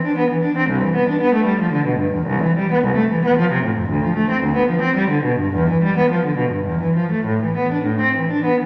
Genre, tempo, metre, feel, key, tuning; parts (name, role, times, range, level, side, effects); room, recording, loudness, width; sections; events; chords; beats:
classical, baroque-style suite movement for unaccompanied cello; 109 BPM; 3/4; uneven beats, rubato; A minor; A4 = 440 Hz
warm cello; solo; 0.0-8.7 s; C2 to D4; -18 LUFS; equal
wet recital hall reverb, RT60 1.4 s; -18 LUFS; mono
0.0-8.7 A section
0.16 | 0.68 1.21 1.74 | 2.30 2.85 3.38 | 3.92 4.46 5.00 | 5.56 6.12 6.68 | 7.26 7.86 8.45